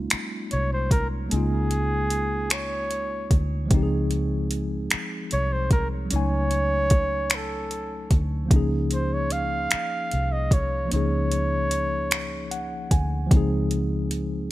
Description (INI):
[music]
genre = slow six-eight R&B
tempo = 50 BPM (dotted quarters)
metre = 6/8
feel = straight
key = unclear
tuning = A4 = 440 Hz
[part]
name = mellow tine electric piano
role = accompaniment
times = 0.0-14.5 s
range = F3 to Ab5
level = -29 LUFS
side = left 1 dB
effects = medium stereo tremolo
[part]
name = vintage muted fingered electric bass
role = bass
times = 0.0-14.5 s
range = C2 to D2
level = -26 LUFS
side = equal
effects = none
[part]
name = smooth R&B drum kit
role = drums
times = 0.1-14.3 s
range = finger snaps, hi-hat, kick drum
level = -22 LUFS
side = equal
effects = none
[part]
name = warm flugelhorn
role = melody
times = 0.5-12.9 s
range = Ab4 to F5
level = -28 LUFS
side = right 1 dB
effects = none
[sound]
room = little or no reverb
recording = none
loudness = -22 LUFS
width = side -16 dB against mid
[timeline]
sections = 0.0-14.5 A section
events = tine electric piano fill 12.1-13.3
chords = 0.0 Db6; 1.3 Eb7sus4/Db; 3.7 Fm7/Db; 6.1 Gbm6/Db; 8.5 Db6; 10.9 Eb7sus4/Db; 13.3 Fm7/Db